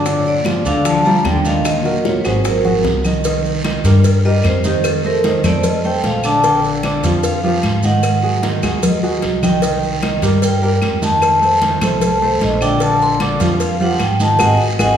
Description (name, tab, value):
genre	Afro-Cuban jazz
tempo	151 BPM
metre	4/4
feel	straight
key	Bb major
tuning	A4 = 439 Hz
part	warm grand piano	accompaniment	0.0-14.9 s	D3 to Eb5	-18 LUFS	right 2 dB	none
part	upright bass	bass	0.0-14.9 s	G1 to Ab2	-19 LUFS	equal	none
part	bongos and cowbell	percussion	0.1-14.9 s	none	-26 LUFS	left 4 dB	none
part	congas	percussion	0.1-14.9 s	none	-23 LUFS	equal	none
part	guiro	percussion	0.1-14.9 s	none	-30 LUFS	right 2 dB	none
part	maracas	percussion	0.1-14.9 s	none	-32 LUFS	right 4 dB	none
part	vibraphone with medium hard mallets	melody	0.2-14.9 s	G4 to C6	-18 LUFS	equal	none
part	warm cello	second line	0.2-2.8 s	Gb2 to G3	-22 LUFS	left 2 dB	none
part	claves	percussion	0.5-14.9 s	none	-30 LUFS	left 3 dB	none
room	wet recital hall reverb, RT60 1.4 s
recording	recorded in a church or concert hall, studio ambience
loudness	-13 LUFS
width	side -9 dB against mid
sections	0.0-3.2 A section; 3.2-15.0 B section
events	drum fill 2.0-3.2, 8.6-9.6; vibraphone solo 3.2-15.0; band accent 14.4-15.0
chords	0.1 Gm7; 1.6 Ebm; 2.4 Ab9; 3.2 Cm7; 4.8 F7; 6.4 Bb6; 8.0 Ab7; 9.6 Cm7; 11.2 F7; 12.8 Bb6; 14.4 Ab5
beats	| 0.06 0.46 0.85 1.25 | 1.65 2.05 2.45 2.85 | 3.25 3.65 4.04 4.44 | 4.84 5.24 5.64 6.04 | 6.44 6.84 7.24 7.63 | 8.03 8.43 8.83 9.23 | 9.63 10.03 10.42 10.82 | 11.22 11.62 12.02 12.41 | 12.81 13.21 13.60 14.00 | 14.40 14.79